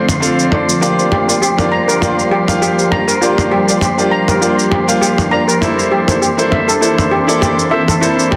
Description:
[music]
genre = sunset chillout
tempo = 100 BPM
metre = 4/4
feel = swing 55% on 16ths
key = G minor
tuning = A4 = 441 Hz
[part]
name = bright grand piano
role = accompaniment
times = 0.0-8.4 s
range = Bb3 to F5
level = -19 LUFS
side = equal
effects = delay
[part]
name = ethereal airy pad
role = sustained chords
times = 0.0-8.4 s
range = D3 to A4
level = -21 LUFS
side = equal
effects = ensemble chorus, built-in reverb
[part]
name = wind-like tuned noise texture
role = texture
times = 0.0-8.4 s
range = C5 to C6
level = -24 LUFS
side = equal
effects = built-in reverb
[part]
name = electronic toms and shaker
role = drums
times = 0.1-8.4 s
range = none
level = -20 LUFS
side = equal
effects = none
[part]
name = steel pan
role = arpeggios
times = 0.8-8.4 s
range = E4 to Bb5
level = -19 LUFS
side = equal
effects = delay
[sound]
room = wet digital room reverb, RT60 1.2 s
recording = dense, heavily limited modern master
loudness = -13 LUFS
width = mono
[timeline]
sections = 0.0-8.4 A section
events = none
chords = 0.0 Dm7; 0.8 Gm7; 5.6 C13

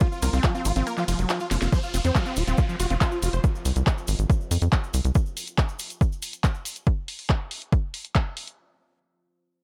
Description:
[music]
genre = psychedelic trance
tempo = 140 BPM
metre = 4/4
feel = straight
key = unclear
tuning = A4 = 441 Hz
[part]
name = dense compressed supersaw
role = melody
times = 0.0-3.4 s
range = F4 to C5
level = -35 LUFS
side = equal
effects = phaser, sidechain pumping, tape echo
[part]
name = evolving wavetable pad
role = sustained chords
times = 0.0-1.8 s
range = F3 to F4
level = -45 LUFS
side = equal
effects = none
[part]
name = overdriven acid bass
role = riff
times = 0.0-3.3 s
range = F3 to Gb4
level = -33 LUFS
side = equal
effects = distortion, sidechain pumping, dub echo
[part]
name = drum and bass drum kit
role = drums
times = 0.0-8.6 s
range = handclaps, hi-hat, ride cymbal, snare drum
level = -33 LUFS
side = equal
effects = none
[part]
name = electronic kick drum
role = drums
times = 0.0-8.2 s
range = none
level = -24 LUFS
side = equal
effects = none
[part]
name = cabasa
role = percussion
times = 0.0-6.8 s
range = none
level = -41 LUFS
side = equal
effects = none
[part]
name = deep dark ambient pad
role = texture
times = 0.0-5.2 s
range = F4 to C6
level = -46 LUFS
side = equal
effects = none
[part]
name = resonant blip pluck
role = second line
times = 0.2-1.0 s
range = Bb3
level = -41 LUFS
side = equal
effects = none
[part]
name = tight sequencer bass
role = bass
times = 0.2-5.1 s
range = Eb1 to F2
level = -26 LUFS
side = equal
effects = none
[part]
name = downlifter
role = sound effects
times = 1.7-5.2 s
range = none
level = -42 LUFS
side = equal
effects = none
[sound]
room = little or no reverb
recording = none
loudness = -25 LUFS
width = mono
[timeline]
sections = 0.0-1.7 A section; 1.7-8.6 B section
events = drop 0.0-1.7; kick drops out 0.9-1.7; drum fill 1.5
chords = 0.0 F5

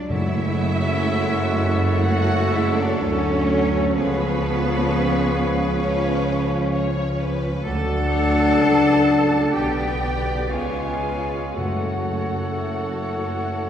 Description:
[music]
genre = classical, slow romantic movement for symphony orchestra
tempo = 55-66 BPM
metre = 4/4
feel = rubato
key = F# minor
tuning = A4 = 441 Hz
[part]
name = rich studio violin section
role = second line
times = 0.0-13.7 s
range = B4 to A5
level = -30 LUFS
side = left 1 dB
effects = none
[part]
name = warm French horn section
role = sustained chords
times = 0.0-13.7 s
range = E#3 to D4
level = -25 LUFS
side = left 2 dB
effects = none
[part]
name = rich studio cello section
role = bass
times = 0.0-13.7 s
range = C#2 to A4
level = -27 LUFS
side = right 2 dB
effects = none
[part]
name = clear oboe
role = second line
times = 0.1-13.7 s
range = C#5 to D5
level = -34 LUFS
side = right 1 dB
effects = none
[part]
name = hollow concert flute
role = second line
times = 0.1-13.7 s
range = E#5 to G#5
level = -31 LUFS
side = left 2 dB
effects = none
[part]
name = warm clarinet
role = second line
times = 0.1-13.7 s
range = G#4 to B4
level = -33 LUFS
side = left 1 dB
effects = none
[part]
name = warm studio viola section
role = accompaniment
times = 0.1-13.7 s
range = C#3 to C#4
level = -28 LUFS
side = right 2 dB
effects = none
[part]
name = rich studio double bass section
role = bass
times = 0.1-13.7 s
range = B1 to F#2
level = -26 LUFS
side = right 1 dB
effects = none
[part]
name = warm tuba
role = bass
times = 0.1-13.7 s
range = F#1 to D2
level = -28 LUFS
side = right 2 dB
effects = none
[part]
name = timpani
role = percussion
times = 0.1-1.5, 11.6-13.1 s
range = F#2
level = -29 LUFS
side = left 3 dB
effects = none
[part]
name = rich studio violin section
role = melody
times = 2.0-13.7 s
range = G#4 to D5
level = -33 LUFS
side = left 3 dB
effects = none
[sound]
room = wet concert hall reverb, RT60 2.5 s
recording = heard from further back in the room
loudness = -19 LUFS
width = side -9 dB against mid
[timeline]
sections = 0.1-13.7 A section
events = none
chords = 0.1 F#m; 4.0 C#7; 7.6 D; 9.5 G/B; 10.5 C#7; 11.6 F#m

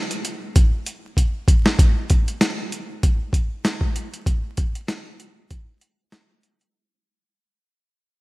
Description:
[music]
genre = hip hop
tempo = 97 BPM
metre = 4/4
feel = swing 56% on 16ths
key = none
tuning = none
[part]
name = boom bap sampler-style drum kit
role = drums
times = 0.1-6.7 s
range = hi-hat, kick drum, snare drum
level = -18 LUFS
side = equal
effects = none
[sound]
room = light reverb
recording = rough home demo mix, vinyl crackle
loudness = -19 LUFS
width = side -21 dB against mid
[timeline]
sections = 0.0-1.8 A section; 1.8-6.7 B section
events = drum fill 1.2-1.8; fade-out 1.8-6.7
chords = none

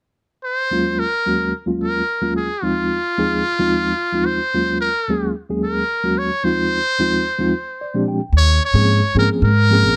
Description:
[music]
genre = electric jazz fusion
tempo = 221 BPM (eighths)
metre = 7/8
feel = straight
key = Eb dorian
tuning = A4 = 440 Hz
[part]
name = trumpet with metal mute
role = melody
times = 0.4-10.0 s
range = F4 to Db5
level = -22 LUFS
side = equal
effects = none
[part]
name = reed electric piano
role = accompaniment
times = 0.7-10.0 s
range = Eb2 to G5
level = -22 LUFS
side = equal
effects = fast tremolo
[part]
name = upright bass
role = bass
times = 8.3-10.0 s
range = Bb1 to Ab2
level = -16 LUFS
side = equal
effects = none
[sound]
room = little or no reverb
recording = dry, close 1970s-style studio recording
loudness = -19 LUFS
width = mono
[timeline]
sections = 0.7-8.3 A section; 8.3-10.0 B section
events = reed electric piano fill 7.5-8.3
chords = 0.0 N.C.; 0.7 Ebm11; 2.6 Fm7/Eb; 4.5 Ebm11; 6.4 Fm7/Eb; 7.5 Bb13; 8.3 Eb13sus4

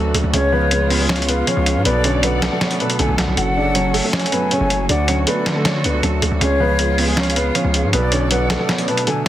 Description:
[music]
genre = hip hop, trap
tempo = 158 BPM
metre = 4/4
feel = half-time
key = unclear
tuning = A4 = 440 Hz
[part]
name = dark grand piano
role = melody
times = 0.0-9.2 s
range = G#3 to F#5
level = -22 LUFS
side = left 1 dB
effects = digital delay
[part]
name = felt-muted upright piano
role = accompaniment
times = 0.0-9.3 s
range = F#2 to D5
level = -22 LUFS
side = right 4 dB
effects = none
[part]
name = warm studio string section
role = sustained chords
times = 0.0-9.3 s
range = C#3 to D5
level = -26 LUFS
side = right 1 dB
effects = none
[part]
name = distorted 808-style bass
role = bass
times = 0.0-8.6 s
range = F#1 to D3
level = -20 LUFS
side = equal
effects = distortion
[part]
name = dusty soul sampler-style drum kit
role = drums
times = 0.1-9.3 s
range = handclaps, hi-hat, snare drum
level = -20 LUFS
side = left 1 dB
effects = none
[part]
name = breathy mellow concert flute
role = second line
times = 0.3-9.3 s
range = C#5 to A5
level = -24 LUFS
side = left 3 dB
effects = digital delay
[sound]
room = small room ambience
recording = dense, heavily limited modern master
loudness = -15 LUFS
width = side -12 dB against mid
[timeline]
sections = 0.0-9.3 A section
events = kick muted 8.7-9.3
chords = 0.3 C#7; 1.9 Bm7; 3.4 F#m; 4.9 D; 6.4 C#7; 7.9 Bm7

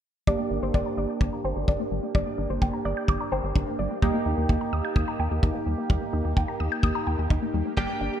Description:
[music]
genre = synth-pop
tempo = 128 BPM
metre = 4/4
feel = straight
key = G minor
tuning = A4 = 440 Hz
[part]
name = soft round pluck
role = second line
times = 0.3-3.9 s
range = C5 to D5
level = -33 LUFS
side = left 1 dB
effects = chorus, ping-pong delay
[part]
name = funky polysynth comp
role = accompaniment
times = 0.3-8.2 s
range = Bb3 to G4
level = -30 LUFS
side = right 2 dB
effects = chorus, low-pass filter
[part]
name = resonant blip pluck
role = arpeggios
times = 0.3-8.2 s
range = G3 to G6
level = -33 LUFS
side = left 1 dB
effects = phaser, low-pass filter, ping-pong delay
[part]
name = rubbery square bass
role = bass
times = 0.3-8.1 s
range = G1 to Eb2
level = -28 LUFS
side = equal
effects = none
[part]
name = kick drum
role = drums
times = 0.3-7.9 s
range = none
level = -26 LUFS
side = equal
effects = none
[part]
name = direct-recorded clean electric guitar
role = melody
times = 7.8-8.2 s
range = G4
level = -30 LUFS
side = left 2 dB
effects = analog chorus
[sound]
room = moderate lush hall reverb, RT60 2.0 s, small room ambience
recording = bright 1980s-style digital production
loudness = -24 LUFS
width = side -10 dB against mid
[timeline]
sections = 0.3-7.8 A section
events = filter sweep 0.3-7.8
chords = 0.3 Gm; 4.0 Eb

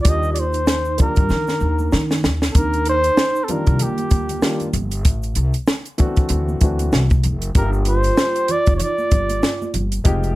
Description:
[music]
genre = hip hop, jazz-hop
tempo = 96 BPM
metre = 4/4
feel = swing 58% on 16ths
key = Eb major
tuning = A4 = 438 Hz
[part]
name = breathy flugelhorn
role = melody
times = 0.0-9.7 s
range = G4 to Eb5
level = -21 LUFS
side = equal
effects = slapback echo
[part]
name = vibraphone with soft mallets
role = second line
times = 0.0-9.7 s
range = Bb3 to G4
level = -28 LUFS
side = right 6 dB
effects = none
[part]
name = dark concert grand piano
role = accompaniment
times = 0.0-10.4 s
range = Eb3 to G4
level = -25 LUFS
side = left 2 dB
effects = none
[part]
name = upright bass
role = bass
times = 0.0-10.3 s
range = F1 to Eb3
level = -20 LUFS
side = equal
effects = none
[part]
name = compact cocktail drum kit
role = drums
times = 0.0-10.4 s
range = hi-hat, kick drum, snare drum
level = -18 LUFS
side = equal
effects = none
[part]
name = tube shaker and congas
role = percussion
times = 0.1-10.4 s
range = none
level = -34 LUFS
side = right 1 dB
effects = none
[sound]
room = light reverb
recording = none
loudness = -16 LUFS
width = side -17 dB against mid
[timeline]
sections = 0.0-2.6 A section; 2.6-10.4 B section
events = drum fill 1.3-2.6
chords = 0.0 Ebmaj7; 5.1 Am; 6.3 D7; 7.6 Gm7

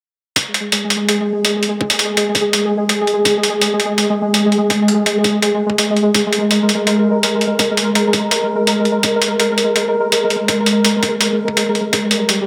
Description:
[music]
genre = half-time drum and bass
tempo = 166 BPM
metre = 4/4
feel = half-time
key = unclear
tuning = A4 = 441 Hz
[part]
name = electronic hi-hat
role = drums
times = 0.4-12.4 s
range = none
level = -19 LUFS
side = equal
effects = none
[part]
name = electronic kick drum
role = drums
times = 0.4-12.0 s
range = none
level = -25 LUFS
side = equal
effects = high-pass filter on kick
[part]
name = pulsing gated texture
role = texture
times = 0.6-12.5 s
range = G3 to Bb4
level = -17 LUFS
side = equal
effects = chorus, built-in reverb
[sound]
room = moderate huge ambient reverb, RT60 6.9 s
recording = none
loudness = -15 LUFS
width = mono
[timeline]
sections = 0.4-12.5 A section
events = none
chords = none

